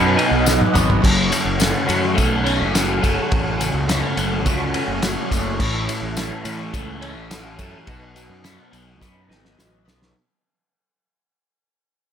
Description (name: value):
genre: psychedelic rock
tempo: 105 BPM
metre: 4/4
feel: straight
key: unclear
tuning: A4 = 440 Hz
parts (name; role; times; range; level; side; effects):
- percussive tonewheel organ; sustained chords; 0.0-10.1 s; B3 to F#5; -29 LUFS; right 3 dB; chorus vibrato, slow rotary speaker
- crunchy overdriven guitar; riff; 0.0-10.1 s; F#2 to D#4; -22 LUFS; equal; phaser
- fuzz fingered electric bass; bass; 0.0-10.1 s; F#1 to A2; -24 LUFS; equal; overdrive
- cloth-damped thuddy drum kit; drums; 0.2-10.1 s; crash cymbal, kick drum, ride cymbal, snare drum, toms; -22 LUFS; equal; none
- tambourine; percussion; 0.2-10.0 s; none; -31 LUFS; left 6 dB; none
room: small room ambience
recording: none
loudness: -17 LUFS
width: side -8 dB against mid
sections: 0.0-10.2 A section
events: fade-out 0.0-10.2; drum fill 0.5-1.0, 9.0-10.2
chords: 0.0 B; 1.0 F#m; 5.6 A; 7.9 B